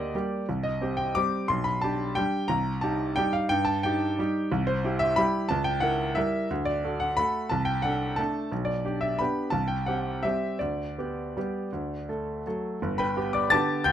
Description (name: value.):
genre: classical, piano waltz.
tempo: 158-190 BPM.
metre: 3/4.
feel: rubato.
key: G major from 4.5 s.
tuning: A4 = 440 Hz.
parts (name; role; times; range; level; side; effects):
clear baby grand piano; solo; 0.0-13.9 s; G1 to A6; -25 LUFS; equal; none.
room: light reverb.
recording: close, detailed microphones.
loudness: -25 LUFS.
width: side -10 dB against mid.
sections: 0.0-12.8 A section; 12.8-13.9 B section.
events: none.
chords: 0.5 Cm; 1.5 G/B; 2.5 Cm; 4.5 C; 5.5 C#dim7; 6.5 D; 7.5 D7/C; 8.5 G/B; 9.5 C; 10.6 G/D; 11.7 D; 12.8 G.